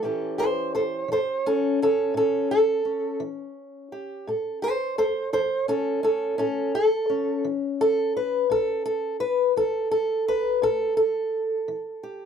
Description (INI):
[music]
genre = acoustic country blues, solo or duo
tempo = 57 BPM (dotted quarters)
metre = 12/8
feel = straight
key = A mixolydian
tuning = A4 = 440 Hz
[part]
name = fingerpicked old ladder-braced acoustic guitar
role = solo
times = 0.0-12.3 s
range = A2 to C5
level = -22 LUFS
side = equal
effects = none
[sound]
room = light reverb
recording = none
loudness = -22 LUFS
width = side -7 dB against mid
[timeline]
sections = 0.0-12.3 A section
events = steel-string acoustic guitar solo 0.0-12.3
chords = 0.0 A7